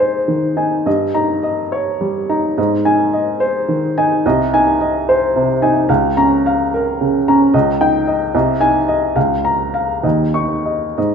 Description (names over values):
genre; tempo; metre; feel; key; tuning
classical, romantic character piece for solo piano; 62-76 BPM (dotted quarters); 6/8; rubato; Ab major; A4 = 440 Hz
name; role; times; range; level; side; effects
warm baby grand piano; solo; 0.0-11.1 s; C2 to Db6; -13 LUFS; equal; none
room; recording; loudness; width
wet recital hall reverb, RT60 1.3 s; minimal, uncompressed stereo recording; -13 LUFS; side -6 dB against mid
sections
0.0-11.1 A section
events
none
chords
0.0 Ab; 0.9 Eb7/G; 2.6 Ab; 4.2 Ab/C; 5.9 Bbm/Db; 7.5 Eb7/Db; 8.3 Ab/C; 9.2 Bbm/Db; 10.0 Dbsus2/Eb